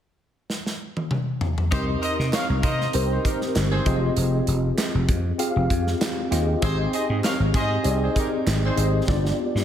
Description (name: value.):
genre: polished 1980s jazz-funk pop.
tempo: 98 BPM.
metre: 4/4.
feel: swing 54% on 16ths.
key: unclear.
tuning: A4 = 440 Hz.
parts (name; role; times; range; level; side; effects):
modern studio drum kit; drums; 0.5-9.6 s; hi-hat, kick drum, snare drum, toms; -26 LUFS; equal; none.
warm horn section; second line; 1.7-8.9 s; C4 to F5; -29 LUFS; equal; none.
mellow tine electric piano; accompaniment; 1.7-9.6 s; B3 to F5; -25 LUFS; left 1 dB; medium stereo tremolo, ensemble chorus.
vintage slap bass; bass; 1.7-9.6 s; F1 to C3; -23 LUFS; equal; none.
group handclap; percussion; 2.3-8.6 s; none; -39 LUFS; right 2 dB; none.
room: moderate lush hall reverb, RT60 1.9 s, small room ambience.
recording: dreamy mix soaked in reverb.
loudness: -20 LUFS.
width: side -10 dB against mid.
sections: 0.0-1.7 A section; 1.7-9.6 B section.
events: drum fill 0.5-1.7, 9.1-9.6.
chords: 0.0 N.C.; 1.7 Cm7; 3.9 Fm9; 6.6 Abmaj7; 9.1 G7.